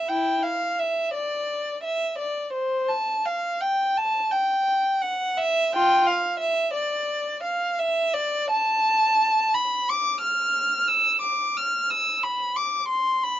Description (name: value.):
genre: classical, baroque-style suite movement for unaccompanied violin.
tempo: 86 BPM.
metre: 4/4.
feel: uneven beats, rubato.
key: unclear.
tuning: A4 = 440 Hz.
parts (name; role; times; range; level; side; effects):
warm violin; solo; 0.0-13.4 s; E4 to F6; -21 LUFS; equal; none.
room: light reverb.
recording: dark, warm production, nothing above 7.7 kHz.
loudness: -21 LUFS.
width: side -12 dB against mid.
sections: 0.0-13.4 A section.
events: none.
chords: none.